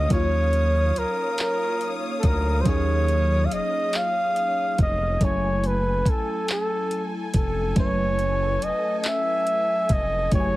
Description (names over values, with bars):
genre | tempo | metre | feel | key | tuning
slow six-eight R&B | 47 BPM (dotted quarters) | 6/8 | straight | Eb minor | A4 = 439 Hz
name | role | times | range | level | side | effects
breathy flugelhorn | melody | 0.0-10.6 s | A4 to F5 | -24 LUFS | equal | slapback echo
FM electric piano with soft pad layer | accompaniment | 0.0-10.6 s | Gb3 to Ab5 | -30 LUFS | equal | chorus, phaser
warm studio string section | sustained chords | 0.0-10.6 s | A4 to Eb6 | -35 LUFS | left 2 dB | plate reverb
round analog bass | bass | 0.0-10.6 s | F1 to Eb2 | -24 LUFS | equal | none
smooth R&B drum kit | drums | 0.1-10.5 s | handclaps, hi-hat, kick drum | -23 LUFS | equal | none
room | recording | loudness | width
light reverb | heavily compressed radio sound, multiband compression | -21 LUFS | side -17 dB against mid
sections
0.0-10.6 A section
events
none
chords
0.0 Ebm9; 5.2 Gbm9